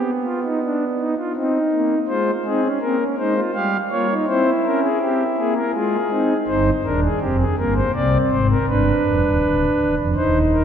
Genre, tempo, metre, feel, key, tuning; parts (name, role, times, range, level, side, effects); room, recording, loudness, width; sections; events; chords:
classical, baroque-style 4-part fugue for pipe organ; 82 BPM; 3/4; straight; A4 = 443 Hz
pipe organ, principal; solo; 0.0-10.6 s; D1 to F5; -17 LUFS; equal
wet church reverb, RT60 2.8 s; nothing above 7.5 kHz; -17 LUFS; side -8 dB against mid
0.0-10.6 A section
0.0 G/B (rootless); 1.3 Cm; 2.1 Fm/Ab; 3.5 Gm7b5; 4.3 C; 5.7 Fm/Ab; 6.5 Cm; 7.9 Abadd9; 8.7 G